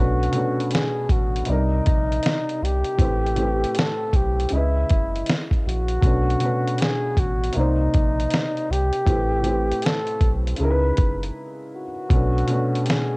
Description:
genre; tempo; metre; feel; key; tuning
lo-fi hip hop; 79 BPM; 4/4; swing 66% on 16ths; unclear; A4 = 438 Hz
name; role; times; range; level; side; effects
breathy flugelhorn; melody; 0.0-13.2 s; Eb4 to B4; -25 LUFS; equal; low-pass filter, cassette tape
felt-muted upright piano; accompaniment; 0.0-13.2 s; A2 to D#5; -25 LUFS; equal; low-pass filter, cassette tape
warm sub bass; bass; 0.0-12.4 s; F#1 to C#2; -23 LUFS; equal; transformer saturation
lo-fi sampler-style drum kit; drums; 0.2-13.1 s; hi-hat, kick drum, snare drum; -21 LUFS; equal; none
room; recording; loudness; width
small room ambience; home recording on cassette; -19 LUFS; side -28 dB against mid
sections
0.0-12.1 A section; 12.1-13.2 A section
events
break 11.3-12.1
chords
0.0 Bm7; 1.5 Cm7; 3.0 Am7; 4.5 C#m7; 6.0 Bm7; 7.5 Cm7; 9.1 Am7; 10.6 C#m7; 12.1 Bm7

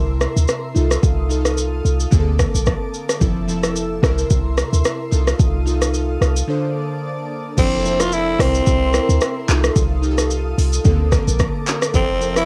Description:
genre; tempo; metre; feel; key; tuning
afrobeats; 110 BPM; 4/4; swing 55% on 16ths; F major; A4 = 440 Hz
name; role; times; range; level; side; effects
glassy digital keys; accompaniment; 0.0-12.5 s; C3 to C5; -26 LUFS; equal; chorus, cassette tape
glassy FM pad; sustained chords; 0.0-12.5 s; Bb3 to E6; -33 LUFS; equal; ensemble chorus, built-in reverb, cassette tape
clean 808-style bass; bass; 0.0-12.5 s; F1 to D2; -21 LUFS; equal; none
afro-pop drum kit; drums; 0.2-12.5 s; crash cymbal, handclaps, hi-hat, kick drum, rim click, shaker; -22 LUFS; equal; overdrive, cassette tape
growling tenor saxophone; melody; 7.6-12.5 s; C4 to F4; -22 LUFS; equal; cassette tape
room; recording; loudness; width
little or no reverb; home recording on cassette; -18 LUFS; mono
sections
0.0-7.6 A section; 7.6-12.5 B section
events
break 6.5-7.6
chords
0.0 C7; 0.8 F7/C; 2.1 Bbmaj7; 3.2 Fmaj7; 4.0 C7; 5.1 F7/C; 6.5 Bbmaj7/D; 7.6 Fmaj7; 8.4 C7; 9.5 F7/C; 10.8 Bbmaj7; 11.9 Fmaj7

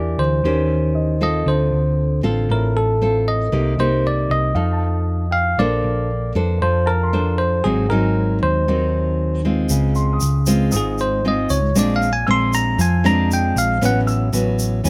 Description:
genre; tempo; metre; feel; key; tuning
bossa nova; 117 BPM; 4/4; straight; Db major from 9.7 s; A4 = 440 Hz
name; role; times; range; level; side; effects
bell-like tine electric piano; melody; 0.0-14.0 s; Ab4 to C6; -24 LUFS; equal; none
nylon-string guitar; accompaniment; 0.0-14.9 s; Ab2 to C5; -23 LUFS; equal; none
hollow-body short-scale picked electric bass; bass; 0.0-14.9 s; Ab1 to F2; -22 LUFS; equal; none
warm grand piano; accompaniment; 0.9-14.9 s; Eb5 to Fb6; -34 LUFS; equal; none
tube shaker; percussion; 9.7-14.9 s; none; -31 LUFS; equal; none
room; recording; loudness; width
light reverb; none; -18 LUFS; mono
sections
0.0-9.7 A section; 9.7-14.9 B section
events
tine electric piano solo 9.7-14.9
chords
0.4 Eb13; 1.5 Dm7; 3.5 Cm7; 4.6 F9; 5.6 Bbmaj9; 7.6 Ab7; 9.7 Dbmaj7; 11.8 Bb9; 13.8 A69

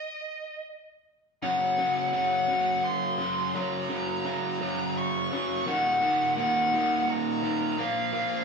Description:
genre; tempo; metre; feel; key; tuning
rock; 57 BPM (dotted quarters); 6/8; straight; unclear; A4 = 438 Hz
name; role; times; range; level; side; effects
nasal lead guitar with a parked wah; melody; 0.0-8.4 s; Eb5 to Db6; -27 LUFS; equal; overdrive
raw garage guitar; riff; 1.4-8.4 s; Eb2 to Bb3; -28 LUFS; equal; overdrive
room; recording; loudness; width
wet stone room reverb, RT60 1.3 s; band playing live in one room; -25 LUFS; side -5 dB against mid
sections
0.0-1.4 A section; 1.4-8.4 B section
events
build-up 1.4-8.4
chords
0.0 N.C.; 1.4 Gb; 5.7 Ebm; 7.8 Bb5

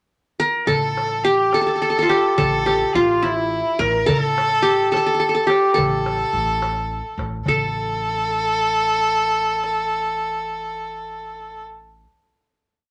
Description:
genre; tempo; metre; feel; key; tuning
Arabic maqam ensemble; 71 BPM (dotted quarters); 6/8; straight; A maqam hijaz; A4 = 440 Hz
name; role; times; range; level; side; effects
qanun; melody; 0.4-12.1 s; E4 to Bb4+25c; -21 LUFS; equal; none
clear violin; second line; 0.7-11.6 s; E4 to Bb4+25c; -24 LUFS; equal; none
upright bass; bass; 0.7-12.0 s; A1; -34 LUFS; equal; none
darbuka; percussion; 0.7-7.7 s; none; -29 LUFS; equal; none
room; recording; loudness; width
moderate studio reverb, RT60 0.5 s; none; -20 LUFS; mono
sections
0.0-0.7 pickup bar; 0.7-7.5 A section; 7.5-10.9 final note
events
none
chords
none

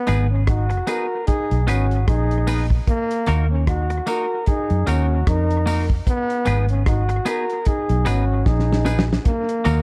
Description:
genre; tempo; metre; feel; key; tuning
roots reggae; 75 BPM; 4/4; swing 57% on 16ths; unclear; A4 = 437 Hz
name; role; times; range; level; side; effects
warm trombone; second line; 0.0-9.8 s; Bb3 to Gb4; -28 LUFS; equal; none
semi-hollow electric guitar; accompaniment; 0.1-9.8 s; Bb3 to Cb5; -30 LUFS; equal; harmonic tremolo, dub echo
vintage muted fingered electric bass; bass; 0.1-9.8 s; Ab1 to Gb2; -22 LUFS; equal; none
cloth-damped thuddy drum kit; drums; 0.1-9.8 s; hi-hat, kick drum, rim click, snare drum; -24 LUFS; equal; none
tambourine; percussion; 0.1-9.8 s; none; -41 LUFS; equal; none
mellow flugelhorn; melody; 0.5-9.1 s; Gb4 to Bb4; -30 LUFS; equal; dub echo
room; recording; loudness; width
light reverb, small room ambience; none; -20 LUFS; mono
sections
0.0-9.8 A section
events
drum fill 8.5-9.3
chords
0.0 Abm; 2.9 Ebm; 6.1 Abm; 9.3 Ebm

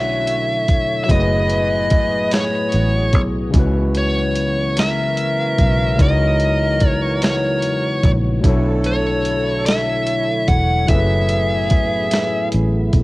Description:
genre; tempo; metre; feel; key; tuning
slow six-eight R&B; 49 BPM (dotted quarters); 6/8; straight; unclear; A4 = 440 Hz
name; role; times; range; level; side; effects
high-gain lead guitar; melody; 0.0-12.5 s; Db5 to F#5; -20 LUFS; equal; distortion, cassette tape
overdriven tine electric piano; accompaniment; 0.0-13.0 s; B2 to C#5; -22 LUFS; left 2 dB; auto-pan, cassette tape
tonewheel organ; sustained chords; 0.0-13.0 s; A2 to Db5; -28 LUFS; right 1 dB; overdrive, chorus vibrato, slow rotary speaker, cassette tape
warm horn section; stabs; 0.0-12.9 s; D3 to Cb5; -28 LUFS; right 2 dB; cassette tape
fingered electric bass; bass; 0.0-13.0 s; E1 to Fb2; -20 LUFS; equal; none
dusty soul sampler-style drum kit; drums; 0.3-13.0 s; hi-hat, kick drum, snare drum; -17 LUFS; equal; cassette tape
room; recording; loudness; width
digital ambience; home recording on cassette; -15 LUFS; side -20 dB against mid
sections
0.0-13.0 A section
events
none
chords
0.0 Bm11; 1.1 Gbm11; 3.5 Dbm11; 8.4 Bm11; 10.9 Gbm11

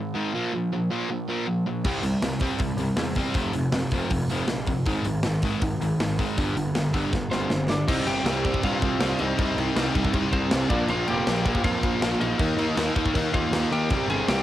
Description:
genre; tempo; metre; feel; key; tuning
punk rock; 159 BPM; 4/4; straight; C minor; A4 = 444 Hz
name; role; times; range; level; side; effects
distorted electric guitar; riff; 0.0-14.4 s; F2 to Eb4; -29 LUFS; left 6 dB; distortion, cassette tape
sludgy distorted guitar; riff; 0.0-14.4 s; F2 to Eb4; -28 LUFS; right 5 dB; overdrive, cassette tape
fuzz picked electric bass; bass; 1.8-14.4 s; F1 to Eb3; -31 LUFS; equal; overdrive
tight metal drum kit; drums; 1.8-14.4 s; crash cymbal, hi-hat, kick drum, snare drum; -28 LUFS; equal; cassette tape
lightly driven lead guitar; melody; 7.3-14.4 s; C4 to Ab5; -30 LUFS; equal; cassette tape, tape echo
fuzz guitar; riff; 7.9-14.4 s; Bb2 to Eb4; -32 LUFS; left 1 dB; none
room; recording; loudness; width
light reverb; home recording on cassette; -22 LUFS; side -13 dB against mid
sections
0.0-7.9 A section; 7.9-14.4 B section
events
drum fill 7.1-7.9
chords
0.3 Bb5; 1.9 C5; 3.4 F5; 4.9 Ab5; 6.4 G5; 7.9 Cm; 10.7 Bb; 12.4 Eb; 13.9 C5

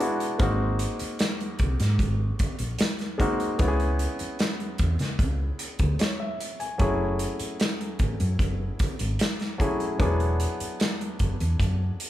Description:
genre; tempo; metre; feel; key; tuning
lush 1970s-style soul; 75 BPM; 4/4; straight; F# minor; A4 = 439 Hz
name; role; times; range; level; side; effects
warm baby grand piano; accompaniment; 0.0-12.1 s; F#3 to G#5; -30 LUFS; left 1 dB; none
modern studio drum kit; drums; 0.0-12.1 s; hi-hat, kick drum, snare drum; -27 LUFS; equal; none
hollow-body short-scale fingered electric bass; bass; 0.4-11.9 s; E1 to C#3; -26 LUFS; equal; none
room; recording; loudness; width
light reverb; band playing live in one room; -24 LUFS; side -14 dB against mid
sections
0.0-12.1 A section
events
none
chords
0.4 G#7; 3.6 C#m7; 6.8 F#m7; 10.0 E7

